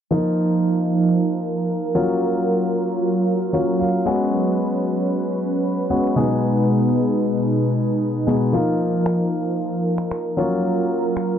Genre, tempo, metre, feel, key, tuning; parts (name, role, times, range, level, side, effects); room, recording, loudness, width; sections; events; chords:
dance-pop; 114 BPM; 4/4; straight; Eb minor; A4 = 440 Hz
warm concert grand piano; accompaniment; 0.1-11.4 s; Cb3 to Ab5; -21 LUFS; left 2 dB
lush unison pad; sustained chords; 0.1-11.4 s; Cb3 to Cb5; -21 LUFS; right 2 dB; chorus
electronic finger snaps; drums; 9.1-11.3 s; -33 LUFS; equal
light reverb; dark, warm production, low-pass filter; -18 LUFS; side -9 dB against mid
0.1-11.4 A section
filter sweep 0.1-11.4; grand piano fill 3.5-4.3
0.1 Ebsus2; 2.0 Gbmaj7; 4.1 Db7sus4; 6.2 Abm/Cb; 8.5 Ebsus2; 10.4 Gbmaj7